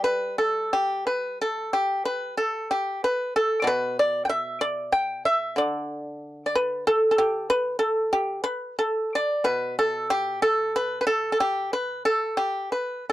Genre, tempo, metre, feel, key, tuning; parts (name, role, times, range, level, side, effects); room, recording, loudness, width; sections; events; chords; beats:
chinese traditional, Chinese solo plucked strings; 62 BPM; 4/4; rubato; G gong mode; A4 = 440 Hz
pipa; solo; 0.0-13.1 s; B2 to G5; -23 LUFS; equal
little or no reverb; dry, close 1970s-style studio recording; -22 LUFS; side -15 dB against mid
0.0-13.1 A section
0.73 1.73 2.70 | 3.66 4.61 5.58 6.54 | 7.50 8.47 9.44 10.42 | 11.40 12.40